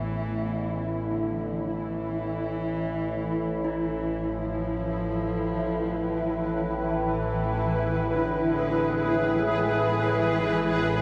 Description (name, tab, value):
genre	dark ambient drone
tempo	free time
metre	none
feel	none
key	unclear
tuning	A4 = 440 Hz
part	dark cello	melody	0.0-11.0 s	D3 to F3	-36 LUFS	equal	tape echo
part	granular cloud pad	sustained chords	0.0-11.0 s	E4 to B4	-30 LUFS	equal	built-in reverb
part	gamelan-type bronze metallophone	arpeggios	0.0-11.0 s	B3 to G#4	-41 LUFS	equal	none
part	overtone-sweeping drone	drone	0.0-11.0 s	A1 to A2	-31 LUFS	equal	chorus, built-in reverb, phaser
part	bronze singing bowl	texture	0.0-11.0 s	none	barely audible	none	none
room	wet cathedral reverb, RT60 7.0 s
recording	none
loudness	-27 LUFS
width	mono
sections	0.0-11.0 A section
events	fade-in on cello 0.0-11.0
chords	0.0 A5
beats	free time